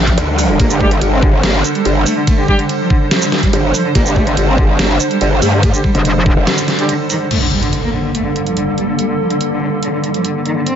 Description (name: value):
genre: heavy wobble dubstep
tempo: 143 BPM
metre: 4/4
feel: half-time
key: G minor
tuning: A4 = 444 Hz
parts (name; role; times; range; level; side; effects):
- dark cello; melody; 0.0-10.8 s; D3 to C4; -18 LUFS; equal; ping-pong delay
- evolving wavetable pad; sustained chords; 0.0-10.8 s; G2 to C5; -19 LUFS; right 1 dB; chorus, built-in reverb, sidechain pumping
- metallic wobble bass; bass; 0.0-0.2, 5.9-6.4 s; F1 to A1; -14 LUFS; equal; chorus, overdrive
- dubstep drum kit; drums; 0.1-10.8 s; crash cymbal, hi-hat, ride cymbal, shaker, snare drum; -20 LUFS; right 1 dB; none
- electronic kick drum; drums; 0.1-6.3 s; none; -14 LUFS; equal; none
- growl bass; bass; 0.2-6.5 s; F1 to G2; -14 LUFS; equal; chorus, overdrive
- dark brass ensemble; stabs; 0.7-6.9 s; G3 to G4; -21 LUFS; right 1 dB; ping-pong delay
- impact; sound effects; 7.3-9.0 s; none; -21 LUFS; equal; none
room: digital ambience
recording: nothing above 7.6 kHz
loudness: -12 LUFS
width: side -9 dB against mid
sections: 0.0-7.3 A section; 7.3-10.8 B section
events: drop 0.0-7.3; break 6.5-7.3; impact 7.3-9.0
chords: 0.0 Gsus2; 7.3 Gmadd9